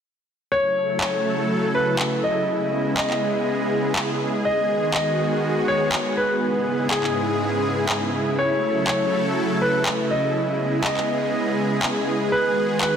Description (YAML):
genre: progressive house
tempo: 122 BPM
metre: 4/4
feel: straight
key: C# minor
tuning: A4 = 438 Hz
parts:
  - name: warm grand piano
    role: melody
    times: 0.5-13.0 s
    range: G#4 to D#5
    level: -24 LUFS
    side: left 1 dB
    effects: dub echo
  - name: supersaw pad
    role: sustained chords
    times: 0.5-13.0 s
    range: G#2 to A4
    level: -22 LUFS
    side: equal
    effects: none
  - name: electronic handclaps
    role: drums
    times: 1.0-12.9 s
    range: none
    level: -27 LUFS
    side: equal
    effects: studio reverb
room: moderate lush hall reverb, RT60 1.8 s, studio reverb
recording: dense, heavily limited modern master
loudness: -20 LUFS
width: side -8 dB against mid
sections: 0.5-13.0 A section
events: none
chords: 0.5 F#m7; 2.5 C#m7; 4.5 G#m7; 6.4 C#m7/G#; 8.4 F#m7; 10.4 C#m7; 12.3 G#m7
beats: | 0.52 1.01 1.50 1.99 | 2.48 2.98 3.47 3.96 | 4.45 4.94 5.43 5.93 | 6.42 6.91 7.40 7.89 | 8.38 8.88 9.37 9.86 | 10.35 10.84 11.34 11.83 | 12.32 12.81